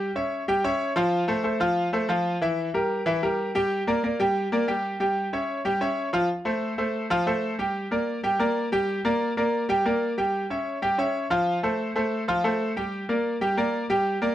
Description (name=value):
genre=latin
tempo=186 BPM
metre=4/4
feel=straight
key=unclear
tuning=A4 = 440 Hz
part: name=bright concert grand piano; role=solo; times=0.0-14.3 s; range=E3 to G5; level=-23 LUFS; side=equal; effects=none
room=light reverb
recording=dark, warm production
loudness=-23 LUFS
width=side -12 dB against mid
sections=0.0-6.3 A section; 6.3-14.3 B section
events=none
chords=0.0 C#dim; 1.1 F; 2.4 Edim; 3.7 Gm; 5.0 C#dim; 6.3 F; 7.6 Gm; 10.2 C#dim; 11.5 F; 12.8 Gm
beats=0.15 0.48 0.80 | 1.12 1.45 1.77 2.09 | 2.42 2.74 3.06 3.38 | 3.71 4.03 4.35 4.68 | 5.00 5.32 5.65 5.97 | 6.29 6.62 6.94 7.26 | 7.59 7.91 8.23 8.56 | 8.88 9.20 9.53 9.85 | 10.17 10.50 10.82 11.14 | 11.47 11.79 12.11 12.44 | 12.76 13.08 13.41 13.73 | 14.05